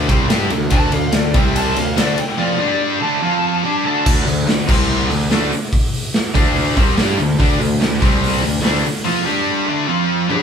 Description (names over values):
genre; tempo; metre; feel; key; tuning
hard rock; 144 BPM; 4/4; straight; D minor; A4 = 440 Hz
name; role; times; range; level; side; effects
sludgy distorted guitar; riff; 0.0-10.4 s; C3 to G4; -22 LUFS; right 5 dB; overdrive
tight distorted guitar; riff; 0.0-10.4 s; C3 to G4; -22 LUFS; left 8 dB; distortion
tight distorted guitar; riff; 0.0-10.4 s; C3 to G4; -24 LUFS; left 1 dB; distortion
fuzz picked electric bass; bass; 0.0-8.8 s; C2 to G2; -21 LUFS; equal; overdrive
raw garage drum kit; drums; 0.1-10.4 s; crash cymbal, hi-hat, kick drum, ride cymbal, snare drum, toms; -18 LUFS; equal; none
lead guitar through a small cranked amp; melody; 0.7-4.1 s; D5 to A5; -22 LUFS; equal; overdrive
room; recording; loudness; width
light reverb; band playing live in one room; -14 LUFS; side -7 dB against mid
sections
0.0-4.1 A section; 4.1-10.4 B section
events
lead electric guitar solo 0.0-4.1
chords
0.0 D5; 1.3 C5; 1.8 Dm; 2.6 G5; 3.0 D5; 3.2 F5; 3.6 D5; 4.7 C5; 5.1 D5; 8.0 C5; 8.4 Dm; 9.3 G5; 9.7 D5; 9.9 F5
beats
0.29 | 0.71 1.13 1.55 1.97 | 2.39 2.80 3.22 3.64 | 4.06 4.47 4.89 5.31 | 5.72 6.14 6.56 6.97 | 7.39 7.81 8.22 8.64 | 9.05 9.47 9.89 10.30